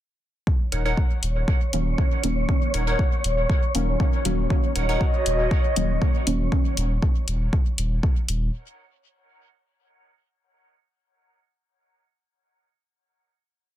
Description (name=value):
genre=dub techno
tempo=119 BPM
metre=4/4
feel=straight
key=Eb minor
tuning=A4 = 439 Hz
part: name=electronic kick drum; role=drums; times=0.5-8.1 s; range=none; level=-21 LUFS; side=equal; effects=none
part: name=wind-like tuned noise texture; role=texture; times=1.3-6.5 s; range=Db5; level=-31 LUFS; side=left 1 dB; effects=built-in reverb, sidechain pumping
part: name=wavetable chord stab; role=riff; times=0.7-5.1 s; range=Eb4 to Gb5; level=-32 LUFS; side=right 2 dB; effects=phaser, sidechain pumping, dub echo
part: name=soft dub sub bass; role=bass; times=0.7-8.5 s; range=Eb1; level=-25 LUFS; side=equal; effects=sidechain pumping
part: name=electronic hi-hat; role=drums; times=0.7-8.4 s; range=none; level=-30 LUFS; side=left 2 dB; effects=none
part: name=deep mellow chord stab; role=stabs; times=1.7-6.8 s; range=Eb3 to Db4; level=-28 LUFS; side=left 1 dB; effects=chorus, phaser, dub echo
part: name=airy breathy pad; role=sustained chords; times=4.8-6.5 s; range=Gb4 to Eb5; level=-27 LUFS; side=right 1 dB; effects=chorus, sidechain pumping
room=light reverb, digital ambience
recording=dense, heavily limited modern master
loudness=-20 LUFS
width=side -12 dB against mid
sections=0.5-8.5 groove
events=none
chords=0.5 Ebm7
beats=| 0.47 0.97 1.48 1.98 | 2.49 2.99 3.50 4.00 | 4.50 5.01 5.51 6.02 | 6.52 7.03 7.53 8.03